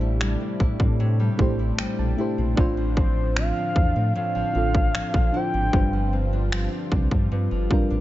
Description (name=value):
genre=contemporary R&B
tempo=76 BPM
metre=4/4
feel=straight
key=D minor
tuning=A4 = 440 Hz
part: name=mellow FM electric piano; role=accompaniment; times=0.0-8.0 s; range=G3 to A5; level=-29 LUFS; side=equal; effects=chorus
part: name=warm analog pad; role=sustained chords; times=0.0-8.0 s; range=C3 to F4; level=-33 LUFS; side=right 1 dB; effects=chorus
part: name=nylon-string guitar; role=arpeggios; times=0.0-8.0 s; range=G2 to E4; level=-31 LUFS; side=left 2 dB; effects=tape echo
part: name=sub bass with octave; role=bass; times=0.0-8.0 s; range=G1 to A2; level=-24 LUFS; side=equal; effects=none
part: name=trap drum kit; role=drums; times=0.2-7.9 s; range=finger snaps, kick drum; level=-23 LUFS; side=equal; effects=none
part: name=gliding portamento lead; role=melody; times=3.0-6.1 s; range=C5 to G5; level=-29 LUFS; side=equal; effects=chorus, tape echo
room=little or no reverb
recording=nothing above 7.6 kHz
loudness=-20 LUFS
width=side -15 dB against mid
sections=0.0-8.0 A section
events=FM electric piano fill 1.4-2.6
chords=0.0 Am7; 2.6 Dm9/A; 5.7 G7sus4